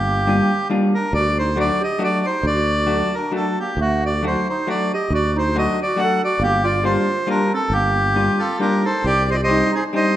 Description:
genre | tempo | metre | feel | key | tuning
musette waltz | 137 BPM | 3/4 | swing 53% on 8ths, rubato | G minor | A4 = 444 Hz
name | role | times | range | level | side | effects
accordion | melody | 0.0-10.2 s | F4 to F#5 | -20 LUFS | equal | none
breathy clarinet | second line | 0.0-10.1 s | A3 to A4 | -25 LUFS | right 3 dB | none
sustaining fretless electric bass | bass | 0.0-9.6 s | G1 to D2 | -22 LUFS | equal | none
vintage hollow-body jazz guitar | accompaniment | 0.3-10.2 s | F#3 to F#4 | -22 LUFS | left 1 dB | none
room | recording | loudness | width
wet recital hall reverb, RT60 1.4 s | none | -17 LUFS | side -12 dB against mid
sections
0.0-9.0 A section; 9.0-10.2 B section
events
none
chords
0.0 Gm7; 1.1 D; 6.4 Gm7; 9.0 Cmadd9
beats
0.27 0.70 | 1.14 1.57 2.00 | 2.44 2.88 3.32 | 3.77 4.22 4.67 | 5.11 5.54 5.97 | 6.40 6.83 7.27 | 7.71 8.15 8.60 | 9.04 9.49 9.92

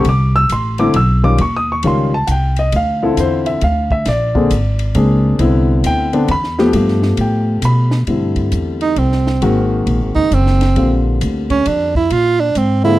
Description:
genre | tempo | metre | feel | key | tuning
jazz, small-group swing and bop | 134 BPM | 3/4 | swing 65% on 8ths | C major | A4 = 440 Hz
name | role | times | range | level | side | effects
warm baby grand piano | accompaniment | 0.0-13.0 s | D3 to E6 | -16 LUFS | left 2 dB | none
upright bass | bass | 0.0-13.0 s | Gb1 to B2 | -16 LUFS | equal | none
compact cocktail drum kit | drums | 0.0-12.7 s | hi-hat, kick drum, ride cymbal, snare drum | -27 LUFS | equal | none
clear tenor saxophone | second line | 8.8-13.0 s | C4 to F4 | -15 LUFS | right 4 dB | none
room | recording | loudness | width
small room ambience | dry, close 1970s-style studio recording | -12 LUFS | side -16 dB against mid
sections
0.0-8.1 A section; 8.1-13.0 A section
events
tenor saxophone solo 8.1-13.0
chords
0.1 C69; 1.4 Eb9; 2.7 Dm9; 4.1 Bb9; 5.4 Cmaj9; 6.7 G9; 8.1 C69; 9.4 Ab9; 10.8 Bb69; 12.1 Bb9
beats
| 0.05 0.50 0.94 | 1.39 1.83 2.28 | 2.73 3.17 3.62 | 4.06 4.51 4.95 | 5.40 5.85 6.29 | 6.74 7.18 7.63 | 8.08 8.53 8.97 | 9.42 9.87 10.32 | 10.77 11.21 11.66 | 12.11 12.56

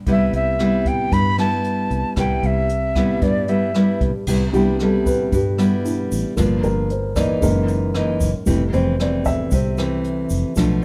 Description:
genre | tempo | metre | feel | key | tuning
bossa nova | 114 BPM | 4/4 | straight | C major | A4 = 440 Hz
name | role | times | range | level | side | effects
nylon-string guitar | accompaniment | 0.0-10.8 s | F2 to E4 | -23 LUFS | equal | none
breathy reedy jazz flute | melody | 0.1-4.0 s | D5 to B5 | -25 LUFS | equal | none
fingered electric bass | bass | 0.1-10.8 s | F1 to G2 | -25 LUFS | equal | none
jazz brush drum kit | drums | 0.1-10.7 s | crash cymbal, hi-hat, kick drum, rim click | -28 LUFS | equal | none
egg shaker | percussion | 4.3-10.8 s | none | -41 LUFS | equal | none
dark baby grand piano | accompaniment | 4.5-10.8 s | F3 to E5 | -25 LUFS | equal | none
room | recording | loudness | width
light reverb | none | -19 LUFS | mono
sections
0.0-4.3 A section; 4.3-10.8 B section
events
grand piano solo 4.3-10.8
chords
0.1 Cmaj7; 6.4 Gm7; 7.4 F#13; 8.5 Fmaj7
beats
| 0.06 0.59 1.12 1.64 | 2.17 2.69 3.22 3.74 | 4.27 4.79 5.32 5.84 | 6.37 6.89 7.42 7.94 | 8.47 8.99 9.52 10.04 | 10.57

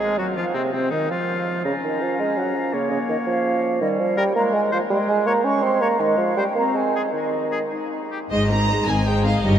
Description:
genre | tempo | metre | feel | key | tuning
quick classical-period movement for symphony orchestra | 109 BPM (dotted quarters) | 6/8 | rubato | Bb minor, Ab major from 3.8 s | A4 = 440 Hz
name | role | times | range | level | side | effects
bright oboe | second line | 0.0-8.2 s | C4 to Bb5 | -30 LUFS | left 3 dB | none
mellow concert flute | second line | 0.0-7.7 s | C5 to Db6 | -28 LUFS | equal | none
warm clarinet | second line | 0.0-8.2 s | Eb3 to Eb4 | -27 LUFS | left 1 dB | none
dark bassoon | accompaniment | 0.0-7.7 s | C3 to Db4 | -23 LUFS | right 3 dB | none
clear symphonic violin section | melody | 8.3-9.6 s | Eb5 to Bb5 | -25 LUFS | right 1 dB | none
rich chamber violin section | second line | 8.3-9.6 s | G4 to Eb5 | -36 LUFS | left 3 dB | none
rich symphonic viola section | accompaniment | 8.3-9.6 s | Eb3 to Eb4 | -27 LUFS | right 2 dB | none
clear symphonic cello section | bass | 8.3-9.6 s | G2 to Ab2 | -21 LUFS | left 1 dB | none
rich chamber double bass section | bass | 8.3-9.6 s | G1 to Ab1 | -23 LUFS | left 1 dB | none
room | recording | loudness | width
wet huge ambient reverb, RT60 7.6 s | in a vast, echoing space | -19 LUFS | side -9 dB against mid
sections
0.0-8.3 A section; 8.3-9.6 B section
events
none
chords
0.0 N.C.; 1.7 Bbm/Db; 3.8 Ebadd9; 4.4 N.C.; 4.9 Bbm9; 6.0 Ab5/Eb; 6.6 Ab; 7.1 N.C.; 8.3 Ab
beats
0.00 | 0.55 1.10 | 1.65 2.19 | 2.73 3.27 | 3.81 4.36 | 4.90 5.45 | 6.00 6.56 | 7.14 7.72 | 8.31 8.87 | 9.44

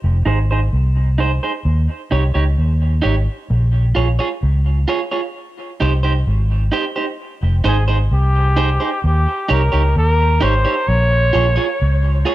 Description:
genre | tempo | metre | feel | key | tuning
dub reggae | 65 BPM | 4/4 | straight | F minor | A4 = 440 Hz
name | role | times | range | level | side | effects
vintage muted fingered electric bass | bass | 0.0-12.2 s | F1 to Eb2 | -15 LUFS | equal | none
electric guitar at the edge of break-up | accompaniment | 0.3-12.3 s | Eb4 to Db5 | -22 LUFS | right 4 dB | low-pass filter, dub echo
clear flugelhorn | melody | 7.7-12.3 s | G4 to Db5 | -19 LUFS | equal | dub echo
room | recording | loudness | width
studio reverb | none | -14 LUFS | side -15 dB against mid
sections
0.0-7.2 A section; 7.2-12.3 B section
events
none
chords
0.0 Fm7; 1.6 Eb7; 3.5 Bbm7; 5.3 Abmaj7; 7.2 Fm7 (rootless); 9.0 Eb7; 10.9 Bbm7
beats
0.72 1.64 2.57 | 3.49 4.42 5.34 6.26 | 7.19 8.11 9.03 9.96 | 10.88 11.80

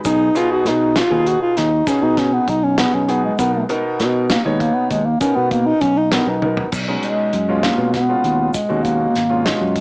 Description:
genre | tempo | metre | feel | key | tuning
progressive instrumental, band music in an uneven meter | 198 BPM (eighths) | 11/8 | straight | B lydian | A4 = 443 Hz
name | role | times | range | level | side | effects
warm concert grand piano | accompaniment | 0.0-9.7 s | B2 to C#5 | -22 LUFS | equal | cassette tape
fingered electric bass | bass | 0.0-9.8 s | G#1 to B2 | -21 LUFS | equal | none
warm soul drum kit | drums | 0.0-9.8 s | crash cymbal, hi-hat, kick drum, snare drum, toms | -23 LUFS | equal | none
egg shaker | percussion | 0.0-9.0 s | none | -37 LUFS | left 1 dB | none
dark bass clarinet | melody | 0.1-9.8 s | G#3 to F#4 | -17 LUFS | equal | cassette tape, analog delay
room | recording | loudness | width
light reverb | home recording on cassette, small speaker sound | -14 LUFS | side -33 dB against mid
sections
0.0-6.7 A section; 6.7-9.8 B section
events
bass clarinet solo 0.0-6.7; drum fill 6.4-6.7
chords
0.1 B6; 3.4 Bmaj7; 6.7 B69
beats
| 0.05 0.35 0.66 0.96 1.26 1.57 1.87 2.17 2.48 2.78 3.08 | 3.39 3.69 3.99 4.30 4.60 4.90 5.21 5.51 5.81 6.12 6.42 | 6.72 7.03 7.33 7.63 7.94 8.24 8.54 8.85 9.15 9.45 9.76

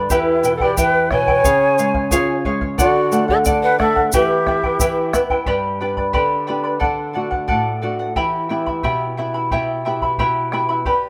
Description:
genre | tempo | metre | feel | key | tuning
andean folk, Andean ensemble | 89 BPM | 2/4 | straight | E dorian | A4 = 440 Hz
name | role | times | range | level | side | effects
charango | accompaniment | 0.0-11.1 s | E4 to B5 | -21 LUFS | equal | none
nylon-string guitar | accompaniment | 0.0-10.8 s | E2 to G4 | -26 LUFS | equal | none
large quena | melody | 0.1-5.1, 10.9-11.1 s | E4 to B5 | -21 LUFS | equal | none
breathy mellow pan flute | second line | 0.1-5.1 s | B4 to G#5 | -26 LUFS | equal | none
bombo | percussion | 0.1-11.0 s | none | -27 LUFS | equal | none
tube shaker | percussion | 0.1-5.3 s | none | -28 LUFS | equal | none
room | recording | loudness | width
light reverb, small room ambience | rough home demo mix | -18 LUFS | mono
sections
0.0-5.5 A section; 5.5-10.9 B section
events
none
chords
0.1 Em; 1.4 C#; 2.8 D; 4.1 Em; 5.5 G; 6.8 D; 8.2 Em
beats
| 0.10 0.77 | 1.44 2.11 | 2.78 3.46 | 4.13 4.80 | 5.47 6.14 | 6.82 7.49 | 8.16 8.84 | 9.51 10.19 | 10.86

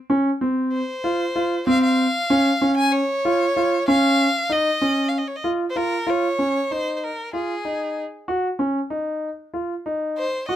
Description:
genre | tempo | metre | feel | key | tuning
contemporary instrumental, contemporary | 191 BPM (eighths) | 7/8 | straight | Db major | A4 = 436 Hz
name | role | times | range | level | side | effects
warm concert grand piano | arpeggios | 0.1-10.6 s | C4 to Gb4 | -21 LUFS | equal | none
clear violin | melody | 0.7-10.6 s | Ab4 to Ab5 | -23 LUFS | equal | none
room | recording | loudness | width
light reverb | close, detailed microphones | -19 LUFS | side -11 dB against mid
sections
0.0-6.1 A section; 6.1-10.6 B section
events
none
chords
0.0 Dbmaj7/C; 3.9 Dbadd9; 8.3 N.C.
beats
0.10 0.42 0.73 1.04 1.36 | 1.68 1.99 2.30 2.62 2.93 3.25 3.56 | 3.88 4.19 4.51 4.82 5.14 5.45 5.76 | 6.08 6.39 6.71 7.03 7.34 7.66 7.97 | 8.29 8.60 8.91 9.23 9.54 9.86 10.18 | 10.49

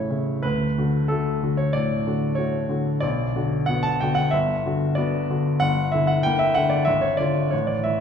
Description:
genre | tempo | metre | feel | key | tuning
classical, romantic character piece for solo piano | 93 BPM | 4/4 | rubato | D major | A4 = 436 Hz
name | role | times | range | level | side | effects
clear baby grand piano | solo | 0.0-8.0 s | G1 to A5 | -20 LUFS | left 1 dB | none
room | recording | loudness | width
wet recital hall reverb, RT60 1.6 s | heard from further back in the room | -20 LUFS | side -7 dB against mid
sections
0.0-8.0 A section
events
none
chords
0.4 D; 3.0 Bm; 4.3 Gmaj7; 5.6 Em7b5/G; 6.9 E13b9/G#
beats
| 0.43 1.10 1.74 2.39 | 3.03 3.69 4.34 4.98 | 5.62 6.25 6.88 7.53

